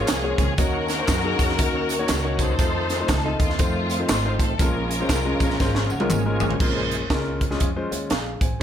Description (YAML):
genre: uptempo gospel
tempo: 120 BPM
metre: 4/4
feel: swing 61% on 8ths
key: Bb minor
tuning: A4 = 440 Hz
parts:
  - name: warm studio string section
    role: melody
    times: 0.0-6.4 s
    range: Ab3 to C5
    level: -27 LUFS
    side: left 2 dB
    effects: none
  - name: warm upright piano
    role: accompaniment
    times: 0.0-8.6 s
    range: Bb2 to Ab5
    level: -27 LUFS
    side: left 3 dB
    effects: none
  - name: bright tonewheel organ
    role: sustained chords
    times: 0.0-8.6 s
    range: Db3 to C5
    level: -31 LUFS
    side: right 4 dB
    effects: slow rotary speaker, overdrive, chorus vibrato
  - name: upright bass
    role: bass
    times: 0.1-8.6 s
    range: Ab1 to Gb2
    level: -28 LUFS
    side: right 1 dB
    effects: none
  - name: crisp fusion drum kit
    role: drums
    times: 0.1-8.5 s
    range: crash cymbal, hi-hat, kick drum, snare drum, toms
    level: -23 LUFS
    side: right 1 dB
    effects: none
  - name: handclaps and tambourine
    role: percussion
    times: 0.1-6.5 s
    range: none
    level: -36 LUFS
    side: right 2 dB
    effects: none
room: studio ambience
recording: none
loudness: -20 LUFS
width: side -9 dB against mid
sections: 0.0-6.6 A section; 6.6-8.6 B section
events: drum fill 5.6-6.6; upright piano fill 5.6-6.6; tonewheel organ solo 6.6-8.6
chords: 0.0 Bbm7; 0.6 Ebm7; 2.6 F7; 4.6 Bbm7